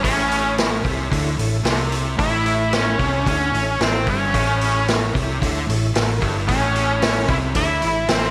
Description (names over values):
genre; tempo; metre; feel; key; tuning
blues rock power trio and southern rock; 112 BPM; 4/4; straight; A mixolydian; A4 = 439 Hz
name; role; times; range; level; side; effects
octave-fuzz lead guitar; melody; 0.0-8.3 s; C4 to E4; -24 LUFS; equal; wah, distortion, slapback echo, analog delay
tonewheel organ; sustained chords; 0.0-8.3 s; E4 to E5; -33 LUFS; equal; slow rotary speaker, chorus vibrato
fuzz guitar; riff; 0.0-8.3 s; G2 to D3; -26 LUFS; equal; distortion
vintage muted fingered electric bass; bass; 0.0-8.3 s; G1 to D2; -28 LUFS; equal; none
vintage drum kit; drums; 0.0-8.2 s; hi-hat, kick drum, snare drum; -25 LUFS; equal; none
room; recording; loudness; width
moderate scoring stage reverb, RT60 2.0 s; big arena sound; -20 LUFS; mono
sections
0.0-8.3 A section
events
none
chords
0.0 A